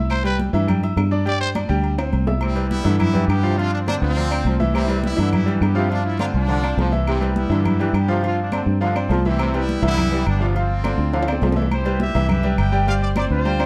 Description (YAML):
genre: latin, salsa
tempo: 207 BPM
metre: 4/4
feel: straight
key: C major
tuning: A4 = 439 Hz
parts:
  - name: bright baby grand piano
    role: accompaniment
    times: 0.0-13.7 s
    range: E3 to E6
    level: -27 LUFS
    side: equal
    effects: none
  - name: fingered electric bass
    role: bass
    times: 0.0-13.7 s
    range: G1 to G2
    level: -23 LUFS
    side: equal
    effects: none
  - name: growling trumpet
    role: melody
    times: 0.1-1.5 s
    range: B4 to D5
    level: -27 LUFS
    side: equal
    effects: none
  - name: agogo bells and timbales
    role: percussion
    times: 0.1-13.7 s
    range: none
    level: -34 LUFS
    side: equal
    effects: none
  - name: claves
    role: percussion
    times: 0.1-13.7 s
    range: none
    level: -41 LUFS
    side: equal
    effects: none
  - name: congas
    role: percussion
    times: 0.1-13.7 s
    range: none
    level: -29 LUFS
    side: equal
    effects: none
  - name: bright trumpet section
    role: melody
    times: 2.4-13.7 s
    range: G3 to G5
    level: -29 LUFS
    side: equal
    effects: none
  - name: brilliant trombone section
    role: second line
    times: 2.4-11.6 s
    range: C3 to F3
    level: -31 LUFS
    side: equal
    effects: none
room: light reverb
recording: dark, warm production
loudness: -20 LUFS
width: mono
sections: 0.0-2.4 A section; 2.4-11.7 B section; 11.7-13.7 B section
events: trumpet solo 0.0-2.4; drum fill 2.0-2.4, 11.1-11.7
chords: 0.0 C; 2.4 Cmaj7; 3.6 G7sus4; 4.7 Cmaj7; 5.9 G7sus4; 7.1 Cmaj7; 8.2 G7sus4; 9.4 Cmaj7; 10.6 G7sus4; 11.7 Cmaj7; 12.9 G7sus4